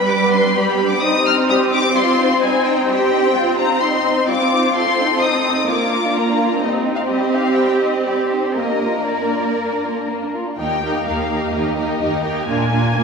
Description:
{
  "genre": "quick classical-period movement for string orchestra",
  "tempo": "127 BPM",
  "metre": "4/4",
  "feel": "rubato",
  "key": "Eb major",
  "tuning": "A4 = 439 Hz",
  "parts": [
    { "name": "dark symphonic violin section", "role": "melody", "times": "0.0-13.0 s", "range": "C5 to F6", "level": "-21 LUFS", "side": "left 4 dB", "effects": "none" },
    { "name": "warm symphonic violin section", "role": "second line", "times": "0.0-13.0 s", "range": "G3 to C5", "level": "-22 LUFS", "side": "left 3 dB", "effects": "none" },
    { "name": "rich symphonic viola section", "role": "accompaniment", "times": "0.0-13.0 s", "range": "G3 to Eb4", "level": "-21 LUFS", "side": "right 2 dB", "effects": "none" },
    { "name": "rich symphonic cello section", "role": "bass", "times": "0.0-13.0 s", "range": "Eb2 to B4", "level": "-21 LUFS", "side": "right 3 dB", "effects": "none" }
  ],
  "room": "wet scoring stage reverb, RT60 1.8 s",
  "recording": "heard from further back in the room",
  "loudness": "-15 LUFS",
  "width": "side -5 dB against mid",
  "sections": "0.0-10.6 A section; 10.6-13.0 B section",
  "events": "none",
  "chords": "0.0 G; 1.0 Cm/G; 4.8 F7/A; 5.7 Bb; 6.6 Cm/G; 8.6 Bb; 10.6 Eb; 12.5 Bb7"
}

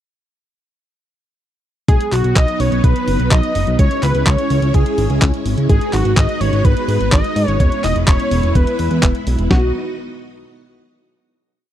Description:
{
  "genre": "italo disco",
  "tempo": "126 BPM",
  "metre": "4/4",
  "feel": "straight",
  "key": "B major",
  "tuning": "A4 = 440 Hz",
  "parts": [
    { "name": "wide unison lead", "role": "melody", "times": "1.9-9.7 s", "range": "F#4 to D#5", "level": "-20 LUFS", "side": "equal", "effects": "tape echo" },
    { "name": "string machine, full ensemble", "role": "sustained chords", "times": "1.9-9.7 s", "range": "F#3 to D#5", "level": "-22 LUFS", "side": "equal", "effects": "ensemble chorus" },
    { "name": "fat analog bass", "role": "bass", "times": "1.9-9.7 s", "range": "E1 to G#2", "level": "-17 LUFS", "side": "equal", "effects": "none" },
    { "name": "clean 12-bit digital drum machine", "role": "drums", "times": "1.9-9.6 s", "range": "kick drum, snare drum", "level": "-14 LUFS", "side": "equal", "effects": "none" },
    { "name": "clean 12-bit digital drum machine", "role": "drums", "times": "1.9-9.5 s", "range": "handclaps, hi-hat", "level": "-23 LUFS", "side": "equal", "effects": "none" }
  ],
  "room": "little or no reverb",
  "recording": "dry, close 1970s-style studio recording",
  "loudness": "-13 LUFS",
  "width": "side -11 dB against mid",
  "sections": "1.9-9.5 chorus; 9.5-11.4 final chord",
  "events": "none",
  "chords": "1.9 B; 3.8 C#m; 5.7 G#m7; 7.6 E; 9.5 B"
}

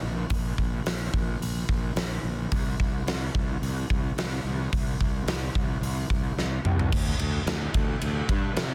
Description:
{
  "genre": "hard rock",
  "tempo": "109 BPM",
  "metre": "4/4",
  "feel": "straight",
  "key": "unclear",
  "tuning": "A4 = 441 Hz",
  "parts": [
    { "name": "fuzz fingered electric bass", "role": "bass", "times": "0.0-8.7 s", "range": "Bb1 to C3", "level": "-32 LUFS", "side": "equal", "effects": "overdrive" },
    { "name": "huge arena drum kit", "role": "drums", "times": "0.3-8.7 s", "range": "crash cymbal, hi-hat, kick drum, ride cymbal, snare drum, toms", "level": "-30 LUFS", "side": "equal", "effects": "none" }
  ],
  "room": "little or no reverb",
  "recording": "dense, heavily limited modern master",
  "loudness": "-27 LUFS",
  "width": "mono",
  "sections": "0.0-6.9 A section; 6.9-8.7 B section",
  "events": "drum fill 6.4-6.9",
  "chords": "none"
}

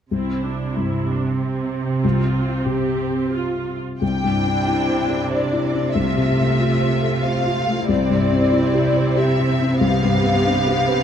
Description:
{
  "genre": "cinematic, emotional film score for orchestra",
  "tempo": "93 BPM",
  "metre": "3/4",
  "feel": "rubato",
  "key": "C major",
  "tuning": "A4 = 442 Hz",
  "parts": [
    { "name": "felt-muted upright piano", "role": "accompaniment", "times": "0.1-11.0 s", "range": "C2 to D5", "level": "-22 LUFS", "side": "left 3 dB", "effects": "none" },
    { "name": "rich symphonic viola section", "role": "accompaniment", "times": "0.1-11.0 s", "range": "A3 to G4", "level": "-25 LUFS", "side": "right 2 dB", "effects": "none" },
    { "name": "rich symphonic cello section", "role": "bass", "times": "0.1-11.0 s", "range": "C3", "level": "-22 LUFS", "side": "right 2 dB", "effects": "none" },
    { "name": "warm symphonic violin section", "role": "melody", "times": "4.0-11.0 s", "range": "D5 to G5", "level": "-23 LUFS", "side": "left 2 dB", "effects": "none" }
  ],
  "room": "moderate scoring stage reverb, RT60 1.7 s",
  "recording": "close, detailed microphones",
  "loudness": "-17 LUFS",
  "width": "side -8 dB against mid",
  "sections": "0.1-4.0 A section; 4.0-11.0 B section",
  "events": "none",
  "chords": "0.1 Cadd9; 2.0 F5/C; 4.0 Cadd9; 6.0 F/C; 7.9 Cadd9; 9.8 G/C"
}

